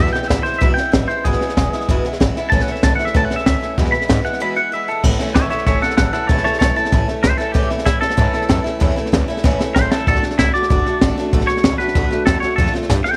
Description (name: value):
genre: rockabilly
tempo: 191 BPM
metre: 4/4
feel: straight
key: A major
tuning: A4 = 440 Hz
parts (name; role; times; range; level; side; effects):
- twangy electric guitar; melody; 0.0-13.2 s; E4 to B5; -22 LUFS; equal; tape echo
- picked steel-string acoustic guitar; accompaniment; 0.0-13.2 s; E2 to F#4; -25 LUFS; equal; none
- upright bass; bass; 0.0-13.1 s; E1 to A2; -24 LUFS; equal; none
- jazz brush drum kit; drums; 0.1-13.2 s; crash cymbal, hi-hat, kick drum, snare drum; -20 LUFS; equal; none
room: light reverb, studio reverb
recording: none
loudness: -17 LUFS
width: mono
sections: 0.0-5.0 A section; 5.0-13.2 B section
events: break 4.4-5.0; clean electric guitar solo 5.0-13.2; drum fill 9.4-10.1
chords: 0.0 E; 2.5 A; 3.8 E; 5.0 A; 10.1 D; 12.6 Dm7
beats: 0.31 0.62 0.94 | 1.25 1.57 1.89 2.20 | 2.52 2.83 3.15 3.46 | 3.78 4.09 4.41 4.72 | 5.04 5.35 5.67 5.98 | 6.30 6.61 6.92 7.24 | 7.55 7.87 8.18 8.50 | 8.81 9.13 9.44 9.76 | 10.07 10.39 10.70 11.02 | 11.33 11.64 11.96 12.27 | 12.59 12.90